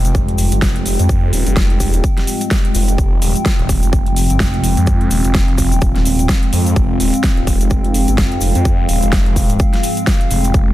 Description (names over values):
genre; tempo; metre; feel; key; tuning
bass house; 127 BPM; 4/4; swing 58% on 16ths; F minor; A4 = 440 Hz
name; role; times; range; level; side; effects
dark analog pad; sustained chords; 0.0-10.7 s; Ab3 to Ab4; -24 LUFS; left 1 dB; chorus, sidechain pumping
phased detuned saw bass; bass; 0.0-10.7 s; Eb1 to F2; -16 LUFS; equal; phaser, overdrive, sidechain pumping
big-room dance drum kit; drums; 0.0-10.5 s; hi-hat, snare drum; -22 LUFS; equal; overdrive
impact; sound effects; 0.1-1.1 s; none; -39 LUFS; equal; none
warbly tape-like pad; texture; 0.0-10.7 s; Ab3 to G5; -21 LUFS; right 1 dB; chorus, built-in reverb, sidechain pumping
electronic kick drum; drums; 0.1-10.7 s; none; -15 LUFS; equal; overdrive
cabasa; percussion; 0.1-10.7 s; none; -28 LUFS; left 2 dB; none
room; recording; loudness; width
digital ambience; dense, heavily limited modern master; -12 LUFS; side -15 dB against mid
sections
0.0-10.7 A section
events
impact 0.0-1.1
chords
0.0 Fmadd9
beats
0.15 0.62 | 1.09 1.57 2.04 2.51 | 2.98 3.46 3.93 4.40 | 4.87 5.35 5.82 6.29 | 6.76 7.24 7.71 8.18 | 8.65 9.12 9.60 10.07 | 10.54